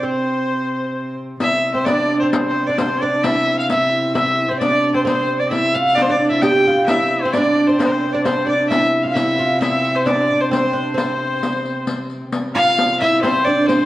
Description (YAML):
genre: medieval dance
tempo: 132 BPM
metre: 3/4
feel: straight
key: C major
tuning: A4 = 440 Hz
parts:
  - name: clear fiddle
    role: melody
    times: 0.0-13.9 s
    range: C5 to G5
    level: -19 LUFS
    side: equal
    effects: none
  - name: bright shawm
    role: second line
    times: 0.0-13.9 s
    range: Bb4 to G5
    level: -26 LUFS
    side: left 3 dB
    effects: none
  - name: oud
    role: second line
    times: 0.0-13.9 s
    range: C4 to G4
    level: -20 LUFS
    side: right 2 dB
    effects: none
  - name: rich viola da gamba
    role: drone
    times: 0.0-13.9 s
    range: C3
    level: -26 LUFS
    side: equal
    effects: none
  - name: riq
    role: percussion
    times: 1.4-13.9 s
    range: none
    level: -24 LUFS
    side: left 2 dB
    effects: none
room: wet recital hall reverb, RT60 1.4 s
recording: worn, warbling old tape, cassette tape, warbly pitch drift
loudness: -15 LUFS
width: side -15 dB against mid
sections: 0.0-1.4 A section; 1.4-12.3 A section; 12.3-13.9 B section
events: none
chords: none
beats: | 0.03 0.49 0.95 | 1.41 1.87 2.33 | 2.78 3.24 3.70 | 4.15 4.61 5.07 | 5.52 5.98 6.43 | 6.89 7.34 7.80 | 8.25 8.70 9.16 | 9.61 10.06 10.52 | 10.97 11.42 11.88 | 12.33 12.78 13.23 | 13.68